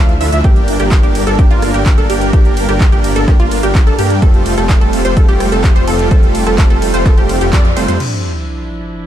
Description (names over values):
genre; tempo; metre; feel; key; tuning
EDM, festival progressive house; 127 BPM; 4/4; straight; unclear; A4 = 437 Hz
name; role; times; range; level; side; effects
rich chamber string section; sustained chords; 0.0-9.1 s; F3 to E5; -24 LUFS; right 1 dB; sidechain pumping
wide unison pluck; arpeggios; 0.0-8.0 s; F4 to F5; -20 LUFS; right 1 dB; sidechain pumping, digital delay
big supersaw lead; riff; 0.0-8.0 s; G3 to F5; -17 LUFS; right 1 dB; sidechain pumping, digital delay
wide detuned saw bass; bass; 0.0-8.0 s; F1 to G2; -17 LUFS; equal; chorus, sidechain pumping
big-room dance drum kit; drums; 0.1-8.1 s; crash cymbal, handclaps, hi-hat, ride cymbal, rim click; -23 LUFS; right 1 dB; none
electronic kick drum; drums; 0.4-7.6 s; none; -10 LUFS; equal; none
sub drop; sound effects; 8.0-9.1 s; none; -21 LUFS; equal; none
room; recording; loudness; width
little or no reverb; dark, warm production; -9 LUFS; side -11 dB against mid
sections
0.0-8.0 A section; 8.0-9.1 B section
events
drop 0.0-8.0; band accent 7.5; impact 8.0-9.1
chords
0.4 Gm; 4.2 Fadd9; 8.0 Dmadd9